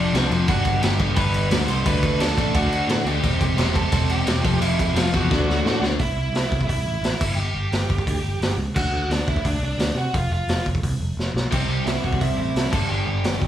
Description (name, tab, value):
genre	punk rock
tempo	174 BPM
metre	4/4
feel	straight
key	G major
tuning	A4 = 440 Hz
part	bluesy overdriven lead guitar	melody	0.0-13.4 s	D4 to C6	-27 LUFS	right 2 dB	distortion
part	overdriven electric guitar	riff	0.0-6.0, 11.5-13.5 s	F2 to D4	-24 LUFS	left 1 dB	none
part	picked electric bass	bass	0.0-13.5 s	E1 to C3	-24 LUFS	equal	none
part	raw garage drum kit	drums	0.1-13.5 s	crash cymbal, hi-hat, kick drum, snare drum	-24 LUFS	equal	none
room	little or no reverb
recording	small room reverb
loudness	-19 LUFS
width	side -11 dB against mid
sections	0.0-6.0 A section; 6.0-13.5 B section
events	drum fill 5.3-6.0, 11.2-11.5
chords	0.5 G; 1.9 D; 3.2 C/E; 4.4 F5; 5.3 D; 6.0 C; 7.2 G5; 8.8 D; 10.1 F5; 11.5 C; 12.7 G5